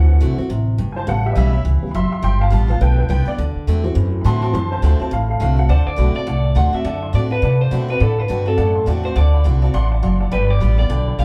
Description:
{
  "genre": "rockabilly",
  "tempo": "208 BPM",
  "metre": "4/4",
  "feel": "swing 60% on 8ths",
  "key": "D mixolydian",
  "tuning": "A4 = 440 Hz",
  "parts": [
    { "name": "honky-tonk upright piano", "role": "accompaniment", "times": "0.0-11.2 s", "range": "C#3 to D6", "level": "-28 LUFS", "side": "equal", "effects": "none" },
    { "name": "picked steel-string acoustic guitar", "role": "accompaniment", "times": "0.0-11.2 s", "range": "G2 to F#4", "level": "-27 LUFS", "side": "equal", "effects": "none" },
    { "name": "upright bass", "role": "bass", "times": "0.0-11.2 s", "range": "F#1 to C3", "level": "-18 LUFS", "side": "equal", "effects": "none" },
    { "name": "electric guitar through a small old amp", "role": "melody", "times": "5.7-11.2 s", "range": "A4 to F#5", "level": "-25 LUFS", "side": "equal", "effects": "none" }
  ],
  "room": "moderate large studio reverb, RT60 1.2 s",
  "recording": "band playing live in one room",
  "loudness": "-17 LUFS",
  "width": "mono",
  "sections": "0.0-5.7 A section; 5.7-11.2 B section",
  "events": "honky-tonk piano solo 0.0-5.7",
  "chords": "0.0 D7; 1.1 A7; 2.2 G7; 3.4 D7; 10.3 G7",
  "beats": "0.21 0.50 0.79 | 1.07 1.36 1.65 1.94 | 2.23 2.52 2.81 3.09 | 3.38 3.67 3.96 4.25 | 4.54 4.83 5.11 5.40 | 5.69 5.98 6.27 6.56 | 6.85 7.14 7.43 7.71 | 8.00 8.29 8.58 8.87 | 9.16 9.45 9.74 10.03 | 10.32 10.61 10.90 11.19"
}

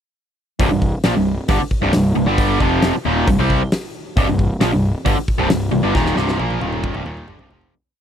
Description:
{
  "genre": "classic rock",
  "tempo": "135 BPM",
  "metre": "4/4",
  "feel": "straight",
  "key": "C minor",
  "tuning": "A4 = 440 Hz",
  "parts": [
    { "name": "overdriven electric guitar", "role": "riff", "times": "0.6-7.7 s", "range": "C2 to C4", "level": "-18 LUFS", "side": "equal", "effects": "none" },
    { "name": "fuzz picked electric bass", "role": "bass", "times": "0.6-7.7 s", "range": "C1 to C2", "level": "-21 LUFS", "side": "equal", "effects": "overdrive" },
    { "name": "huge arena drum kit", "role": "drums", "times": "0.6-7.7 s", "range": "hi-hat, kick drum, snare drum, toms", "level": "-21 LUFS", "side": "equal", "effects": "none" }
  ],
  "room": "little or no reverb",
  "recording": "dry, close 1970s-style studio recording",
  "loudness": "-15 LUFS",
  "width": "side -9 dB against mid",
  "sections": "0.6-7.7 riff",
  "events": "fade-out 5.9-7.7; drum fill 5.9-7.7",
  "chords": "0.6 Cm",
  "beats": "| 0.60 1.05 1.49 1.94 | 2.38 2.83 3.28 3.72 | 4.17 4.61 5.06 5.50 | 5.95 6.39 6.84 7.28"
}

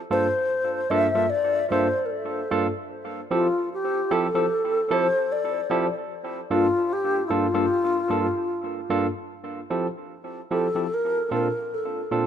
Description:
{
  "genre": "reggae",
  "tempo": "75 BPM",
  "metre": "4/4",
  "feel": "swing 60% on 16ths",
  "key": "F major",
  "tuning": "A4 = 439 Hz",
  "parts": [
    { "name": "wooden-headed alto flute", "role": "melody", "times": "0.1-12.3 s", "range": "E4 to E5", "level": "-24 LUFS", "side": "left 2 dB", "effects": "tape echo" },
    { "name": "barky tine electric piano", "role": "accompaniment", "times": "0.1-12.3 s", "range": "G2 to A4", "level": "-26 LUFS", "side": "right 2 dB", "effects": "overdrive, auto-pan, tape echo" }
  ],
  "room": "moderate echo chamber reverb, RT60 1.7 s",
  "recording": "dark, warm production",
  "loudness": "-22 LUFS",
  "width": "side -9 dB against mid",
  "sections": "0.0-9.3 A section; 9.3-12.3 B section",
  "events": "none",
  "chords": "0.0 Gm9; 2.9 Fmaj7; 6.1 Gm9; 9.3 Fmaj7; 10.9 Bbmaj7",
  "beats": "0.50 1.30 2.10 | 2.90 3.70 4.50 5.30 | 6.10 6.91 7.71 8.51 | 9.31 10.11 10.91 11.71"
}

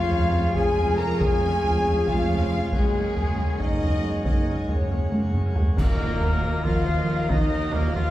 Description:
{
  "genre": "cinematic, epic orchestral film score",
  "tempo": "276 BPM (eighths)",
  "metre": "7/8",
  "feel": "straight",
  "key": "Eb minor",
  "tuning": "A4 = 436 Hz",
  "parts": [
    { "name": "warm symphonic violin section", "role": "melody", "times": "0.0-8.1 s", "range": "Ab4 to Bb5", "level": "-37 LUFS", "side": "left 2 dB", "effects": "none" },
    { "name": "large flute ensemble", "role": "second line", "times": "0.0-8.1 s", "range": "Ab4 to Bb5", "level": "-34 LUFS", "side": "left 2 dB", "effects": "none" },
    { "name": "warm symphonic violin section", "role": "second line", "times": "0.0-8.1 s", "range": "Ab4 to Bb5", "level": "-36 LUFS", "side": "left 2 dB", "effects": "none" },
    { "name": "warm symphonic viola section", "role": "accompaniment", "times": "0.0-8.1 s", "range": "F3 to Bb4", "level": "-34 LUFS", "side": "equal", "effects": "none" },
    { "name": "mellow French horn section", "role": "sustained chords", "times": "0.0-8.1 s", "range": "Ab3 to Bb4", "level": "-27 LUFS", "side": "left 2 dB", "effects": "none" },
    { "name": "pipe organ, principal chorus", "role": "sustained chords", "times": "0.0-8.1 s", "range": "Ab3 to Bb5", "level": "-34 LUFS", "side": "equal", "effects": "none" },
    { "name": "dark symphonic cello section", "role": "bass", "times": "0.0-8.1 s", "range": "F2 to F3", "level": "-29 LUFS", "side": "right 2 dB", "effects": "none" },
    { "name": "rich symphonic double bass section", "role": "bass", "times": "0.0-8.1 s", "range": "F1 to Eb2", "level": "-31 LUFS", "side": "right 2 dB", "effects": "none" },
    { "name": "solo taiko drums", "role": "drums", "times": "0.1-8.1 s", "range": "none", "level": "-25 LUFS", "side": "equal", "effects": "none" },
    { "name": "warm trumpet", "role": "stabs", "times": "5.8-8.1 s", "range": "Bb3 to F4", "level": "-31 LUFS", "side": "equal", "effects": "none" },
    { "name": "clash cymbals and concert bass drum", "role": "percussion", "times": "5.8-6.6 s", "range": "none", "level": "-33 LUFS", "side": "equal", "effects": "none" },
    { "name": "timpani", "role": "percussion", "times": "5.8-6.4 s", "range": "Eb3", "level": "-36 LUFS", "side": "left 1 dB", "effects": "none" }
  ],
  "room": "wet recital hall reverb, RT60 1.4 s",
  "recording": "heard from further back in the room",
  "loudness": "-20 LUFS",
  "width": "side -14 dB against mid",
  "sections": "0.0-5.8 A section; 5.8-8.1 B section",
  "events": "drum fill 5.1-5.8; band accent 5.8-6.2",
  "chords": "0.0 Db/F; 2.7 Gbadd9; 5.8 Ebmadd9",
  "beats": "0.12 0.34 0.56 0.77 0.99 | 1.21 1.43 1.65 1.86 2.08 2.30 2.52 | 2.73 2.95 3.17 3.39 3.60 3.82 4.04 | 4.26 4.48 4.69 4.91 5.13 5.35 5.56 | 5.78 6.00 6.22 6.43 6.65 6.87 7.08 | 7.30 7.52 7.74 7.95"
}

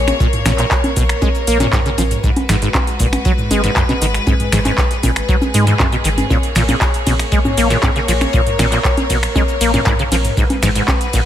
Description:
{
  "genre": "acid house",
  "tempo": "118 BPM",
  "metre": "4/4",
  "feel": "straight",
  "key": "Bb phrygian",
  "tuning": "A4 = 440 Hz",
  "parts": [
    { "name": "clear studio string section", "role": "sustained chords", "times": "0.0-11.3 s", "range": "Ab3 to Db5", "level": "-21 LUFS", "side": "left 2 dB", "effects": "sidechain pumping" },
    { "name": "round analog bass", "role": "bass", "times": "0.0-11.3 s", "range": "Ab1 to Ab2", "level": "-19 LUFS", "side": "equal", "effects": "sidechain pumping" },
    { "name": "booming analog drum machine", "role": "drums", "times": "0.1-11.2 s", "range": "congas, finger snaps, handclaps, hi-hat, ride cymbal, shaker, snare drum, toms", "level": "-19 LUFS", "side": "equal", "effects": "none" },
    { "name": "acid bass, saw", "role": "riff", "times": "0.2-11.2 s", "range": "Gb2 to Bb3", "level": "-19 LUFS", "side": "equal", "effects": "overdrive, lush chorus, dub echo" },
    { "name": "electronic kick drum", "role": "drums", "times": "0.2-11.2 s", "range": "none", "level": "-17 LUFS", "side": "equal", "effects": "none" },
    { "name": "warm soul drum kit", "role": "drums", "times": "0.2-11.3 s", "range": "hi-hat, snare drum", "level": "-31 LUFS", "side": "left 3 dB", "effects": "none" }
  ],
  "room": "light reverb, digital ambience",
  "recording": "none",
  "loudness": "-13 LUFS",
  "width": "side -11 dB against mid",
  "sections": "0.0-11.3 A section",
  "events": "none",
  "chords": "0.0 Bbm7; 2.2 Abm7; 6.3 Bbm7; 10.4 Abm7",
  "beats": "| 0.20 0.71 1.22 1.73 | 2.24 2.75 3.25 3.76 | 4.27 4.78 5.29 5.80 | 6.30 6.81 7.32 7.83 | 8.34 8.85 9.36 9.86 | 10.37 10.88"
}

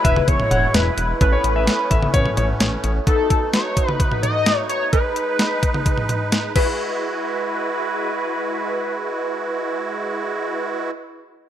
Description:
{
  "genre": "synth-pop",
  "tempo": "129 BPM",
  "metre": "4/4",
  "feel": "straight",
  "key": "E major",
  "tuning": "A4 = 439 Hz",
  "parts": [
    { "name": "octave-doubled lead", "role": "melody", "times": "0.0-10.9 s", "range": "A4 to D#5", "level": "-23 LUFS", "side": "left 1 dB", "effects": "chorus, phaser, ping-pong delay" },
    { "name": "clear concert grand piano", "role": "second line", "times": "0.0-2.4, 6.6-8.1 s", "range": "B4 to F#5", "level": "-26 LUFS", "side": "left 4 dB", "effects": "ping-pong delay" },
    { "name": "funky polysynth comp", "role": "accompaniment", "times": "0.0-10.9 s", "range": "D#4 to C#5", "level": "-29 LUFS", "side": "equal", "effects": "chorus" },
    { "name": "musette accordion", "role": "sustained chords", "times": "0.0-10.9 s", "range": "F#3 to B4", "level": "-27 LUFS", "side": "right 3 dB", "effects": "none" },
    { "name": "chorused synth bass", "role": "bass", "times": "0.0-3.0 s", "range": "E1 to A1", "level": "-22 LUFS", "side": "equal", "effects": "none" },
    { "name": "clean 12-bit digital drum machine", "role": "drums", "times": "0.0-6.7 s", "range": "crash cymbal, hi-hat, kick drum, snare drum, toms", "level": "-20 LUFS", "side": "equal", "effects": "overdrive" }
  ],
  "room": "light reverb",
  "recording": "rough home demo mix",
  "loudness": "-18 LUFS",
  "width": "side -10 dB against mid",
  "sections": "0.0-6.8 A section; 6.8-10.5 B section",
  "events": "none",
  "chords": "0.0 Eadd9; 1.2 Aadd9; 3.1 B7; 4.9 G#m; 6.6 Eadd9",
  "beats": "0.28 0.74 | 1.21 1.67 2.14 2.60 | 3.07 3.53 4.00 4.46 | 4.93 5.39 5.86 6.32 | 6.79 7.25 7.72 8.18 | 8.65 9.11 9.58 10.04"
}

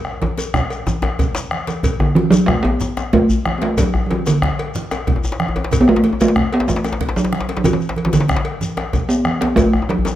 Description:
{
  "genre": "west african traditional, West African drum ensemble",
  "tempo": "124 BPM (dotted quarters)",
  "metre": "12/8",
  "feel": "straight",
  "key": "unclear",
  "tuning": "A4 = 440 Hz",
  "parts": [
    { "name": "bombo", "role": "percussion", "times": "0.0-9.9 s", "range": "none", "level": "-23 LUFS", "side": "equal", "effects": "none" },
    { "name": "djembe", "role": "percussion", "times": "0.1-10.2 s", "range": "none", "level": "-28 LUFS", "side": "left 4 dB", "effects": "none" },
    { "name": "congas", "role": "percussion", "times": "0.2-10.0 s", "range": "none", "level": "-26 LUFS", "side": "right 4 dB", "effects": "none" },
    { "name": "cowbell", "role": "percussion", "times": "0.2-10.2 s", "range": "none", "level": "-28 LUFS", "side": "equal", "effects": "none" },
    { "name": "djembe", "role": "percussion", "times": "0.2-10.2 s", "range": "none", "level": "-23 LUFS", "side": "left 2 dB", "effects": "none" },
    { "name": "shekere", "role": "percussion", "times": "0.4-10.2 s", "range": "none", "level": "-29 LUFS", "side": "left 3 dB", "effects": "none" },
    { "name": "talking drum", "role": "melody", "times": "2.0-10.2 s", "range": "D3 to B3", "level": "-16 LUFS", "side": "right 1 dB", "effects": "none" }
  ],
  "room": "light reverb",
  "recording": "close, detailed microphones",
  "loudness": "-15 LUFS",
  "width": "side -12 dB against mid",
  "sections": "0.0-1.8 A section; 1.8-10.2 B section",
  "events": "drum fill 0.0-1.8",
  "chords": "none",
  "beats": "0.38 0.86 1.35 | 1.84 2.32 2.81 3.29 | 3.78 4.26 4.75 5.23 | 5.72 6.20 6.68 7.16 | 7.65 8.13 8.61 9.09 | 9.57 10.05"
}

